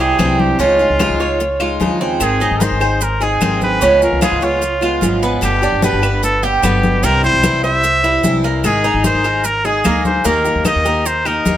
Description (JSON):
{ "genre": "latin, Cuban son and guajira", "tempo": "149 BPM", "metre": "4/4", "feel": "straight", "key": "unclear", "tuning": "A4 = 440 Hz", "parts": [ { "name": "trumpet with straight mute", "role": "melody", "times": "0.0-11.6 s", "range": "F4 to E5", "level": "-18 LUFS", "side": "equal", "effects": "none" }, { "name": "picked steel-string acoustic guitar", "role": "accompaniment", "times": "0.0-11.6 s", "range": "B2 to Ab4", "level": "-20 LUFS", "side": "left 3 dB", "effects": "none" }, { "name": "Cuban tres", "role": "arpeggios", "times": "0.0-11.6 s", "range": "Bb3 to Db5", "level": "-18 LUFS", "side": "right 4 dB", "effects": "none" }, { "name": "upright bass", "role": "bass", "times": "0.0-11.6 s", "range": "G1 to Eb2", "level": "-20 LUFS", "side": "equal", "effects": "none" }, { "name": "claves", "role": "percussion", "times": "0.2-11.5 s", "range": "none", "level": "-28 LUFS", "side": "left 2 dB", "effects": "none" }, { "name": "congas", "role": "percussion", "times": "0.2-11.6 s", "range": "none", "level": "-20 LUFS", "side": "left 2 dB", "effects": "none" }, { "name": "maracas", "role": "percussion", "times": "2.2-11.6 s", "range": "none", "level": "-27 LUFS", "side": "right 6 dB", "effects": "none" } ], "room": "moderate plate reverb, RT60 2.4 s", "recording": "none", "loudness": "-12 LUFS", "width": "side -11 dB against mid", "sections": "0.0-11.6 A section", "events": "none", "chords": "0.0 C; 0.6 Dbadd9; 2.2 Ab; 3.8 Db7; 5.4 G; 7.0 C; 8.6 Absus2; 10.3 Eb" }